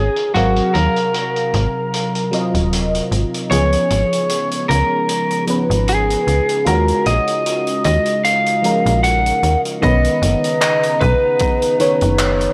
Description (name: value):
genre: vaporwave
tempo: 76 BPM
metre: 4/4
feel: swing 55% on 16ths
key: B lydian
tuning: A4 = 440 Hz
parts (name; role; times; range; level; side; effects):
- lightly driven lead guitar; melody; 0.0-12.5 s; F#4 to F#5; -20 LUFS; equal; tape echo
- warbly tape-like pad; sustained chords; 0.0-12.5 s; B#2 to A#5; -31 LUFS; equal; chorus, built-in reverb
- slap-like FM bass; bass; 0.0-12.5 s; D#1 to D#2; -20 LUFS; equal; none
- vintage drum kit; drums; 0.2-12.5 s; handclaps, hi-hat; -28 LUFS; equal; low-pass filter on hats, low-pass filter on snare, low-pass filter on room, gated reverb
- FM electric piano with soft pad layer; accompaniment; 0.3-12.5 s; D#3 to E#5; -23 LUFS; equal; analog chorus
- electronic kick drum; drums; 9.8-11.6 s; none; -23 LUFS; equal; none
room: light reverb, small room ambience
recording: none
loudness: -17 LUFS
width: mono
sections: 0.0-9.8 A section; 9.8-12.5 B section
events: none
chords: 0.0 G#13; 3.5 C#7; 6.7 D#m11; 9.8 Bmaj9